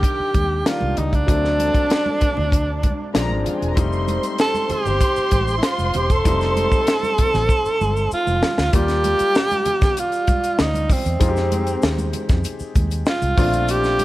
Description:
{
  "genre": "lush 1970s-style soul",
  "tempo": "97 BPM",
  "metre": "4/4",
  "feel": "straight",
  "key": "unclear",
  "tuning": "A4 = 442 Hz",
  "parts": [
    { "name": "breathy tenor saxophone", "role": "melody", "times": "0.0-14.0 s", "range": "C4 to A4", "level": "-21 LUFS", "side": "right 1 dB", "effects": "none" },
    { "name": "dark studio violin section", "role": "second line", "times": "0.0-8.4 s", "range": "F4 to C6", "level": "-27 LUFS", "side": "equal", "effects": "none" },
    { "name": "clear grand piano", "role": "accompaniment", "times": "0.0-14.0 s", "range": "Eb3 to D5", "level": "-27 LUFS", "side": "left 4 dB", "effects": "none" },
    { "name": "tight funk drum kit", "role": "drums", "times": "0.0-14.0 s", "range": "hi-hat, kick drum, snare drum", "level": "-20 LUFS", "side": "equal", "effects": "none" },
    { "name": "vintage muted fingered electric bass", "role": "bass", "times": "0.2-14.0 s", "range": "E1 to F2", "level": "-23 LUFS", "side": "equal", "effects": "none" },
    { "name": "congas", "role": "percussion", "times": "0.3-14.0 s", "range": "none", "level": "-31 LUFS", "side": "right 4 dB", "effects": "none" },
    { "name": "tube shaker", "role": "percussion", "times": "3.8-14.0 s", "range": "none", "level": "-42 LUFS", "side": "left 5 dB", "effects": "none" }
  ],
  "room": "small room ambience",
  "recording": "none",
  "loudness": "-17 LUFS",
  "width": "side -16 dB against mid",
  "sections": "0.0-8.7 A section; 8.7-14.0 B section",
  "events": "drum fill 7.5-8.7",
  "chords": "0.0 Cm7 (rootless); 1.3 D7; 3.1 Bb9; 3.8 F7; 8.7 Ebmaj7; 11.2 Fm7; 13.4 Bbmaj7"
}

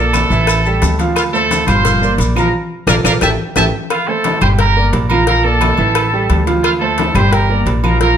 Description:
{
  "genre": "latin, salsa",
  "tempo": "175 BPM",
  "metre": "4/4",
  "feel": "straight",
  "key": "unclear",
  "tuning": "A4 = 440 Hz",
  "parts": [
    { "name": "bright trumpet section", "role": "melody", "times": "0.0-8.2 s", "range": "F4 to C6", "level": "-16 LUFS", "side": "right 1 dB", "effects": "none" },
    { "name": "clear baby grand piano", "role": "accompaniment", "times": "0.0-8.1 s", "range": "E3 to G5", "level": "-18 LUFS", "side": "right 4 dB", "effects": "none" },
    { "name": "upright bass", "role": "bass", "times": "0.0-8.2 s", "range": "G1 to D2", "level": "-16 LUFS", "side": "equal", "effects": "none" },
    { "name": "agogo bells and timbales", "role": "percussion", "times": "0.1-8.0 s", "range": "none", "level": "-24 LUFS", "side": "right 5 dB", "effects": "none" },
    { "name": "claves", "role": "percussion", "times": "0.1-8.0 s", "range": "none", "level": "-26 LUFS", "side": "left 12 dB", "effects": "none" },
    { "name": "congas", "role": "percussion", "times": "0.1-8.2 s", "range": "none", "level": "-22 LUFS", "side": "left 4 dB", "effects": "none" },
    { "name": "cowbell", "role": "percussion", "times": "0.1-8.2 s", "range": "none", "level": "-23 LUFS", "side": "left 6 dB", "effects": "none" },
    { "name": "maracas", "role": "percussion", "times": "0.1-3.6 s", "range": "none", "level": "-27 LUFS", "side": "left 6 dB", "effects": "none" }
  ],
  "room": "moderate large studio reverb, RT60 1.1 s",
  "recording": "none",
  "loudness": "-11 LUFS",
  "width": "side -8 dB against mid",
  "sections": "0.0-3.9 A section; 3.9-8.2 A section",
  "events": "band accent 2.5-3.9; drum fill 3.4-3.9",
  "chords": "0.5 A5; 1.2 Dm7; 1.9 Gm7; 2.5 Bbmaj7; 3.2 A5; 3.9 G9sus4; 4.6 Gm7; 5.3 Bbmaj7; 6.0 A5; 6.6 Dm7; 7.3 Gm7"
}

